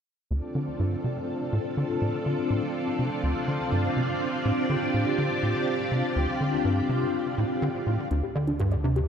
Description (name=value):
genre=ambient, sequencer-driven space music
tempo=123 BPM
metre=4/4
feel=straight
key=D minor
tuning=A4 = 440 Hz
part: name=string machine, full ensemble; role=sustained chords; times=0.3-9.1 s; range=C4 to D5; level=-27 LUFS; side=left 1 dB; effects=phaser, ensemble chorus
part: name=tight sequencer bass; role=riff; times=0.3-9.0 s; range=D2 to D3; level=-28 LUFS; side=equal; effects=ensemble chorus, ping-pong delay
part: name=warbly dusty pluck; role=arpeggios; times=8.1-9.1 s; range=D4 to D5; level=-31 LUFS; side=left 1 dB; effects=chorus, auto-pan, ping-pong delay
part: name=warm sub bass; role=bass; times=8.1-9.1 s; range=D2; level=-32 LUFS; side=equal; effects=none
part: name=electronic hi-hat and percussion blips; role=percussion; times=8.1-9.1 s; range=none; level=-58 LUFS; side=right 2 dB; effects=ping-pong delay
room=wet lush hall reverb, RT60 2.8 s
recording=dreamy mix soaked in reverb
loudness=-24 LUFS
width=side -7 dB against mid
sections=0.3-8.1 A section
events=filter sweep on analog synth bass 0.3-8.1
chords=0.3 Dm7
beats=| 0.31 0.79 1.28 1.77 | 2.26 2.75 3.23 3.72 | 4.21 4.70 5.18 5.67 | 6.16 6.65 7.13 7.62 | 8.11 8.60